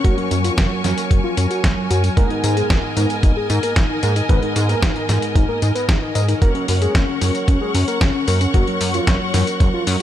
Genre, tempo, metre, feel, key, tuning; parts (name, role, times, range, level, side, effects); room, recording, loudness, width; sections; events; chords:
italo disco; 113 BPM; 4/4; straight; F# major; A4 = 441 Hz
soft octave-layered synth lead; melody; 0.0-10.0 s; F#3 to D#5; -23 LUFS; left 1 dB; chorus, ping-pong delay
clear symphonic string section; sustained chords; 0.0-10.0 s; A#4 to C#6; -25 LUFS; left 1 dB
dark concert grand piano; stabs; 0.0-10.0 s; G#2 to A#4; -27 LUFS; right 3 dB
chorused synth bass; bass; 0.0-10.0 s; F#1 to G#2; -19 LUFS; equal
dusty soul sampler-style drum kit; drums; 0.0-10.0 s; hi-hat, snare drum, tambourine; -24 LUFS; equal
electronic kick drum; drums; 0.0-9.7 s; -16 LUFS; equal
light reverb; -15 LUFS; side -11 dB against mid
0.0-10.0 A section
0.0 F#; 2.2 G#madd9; 6.4 F#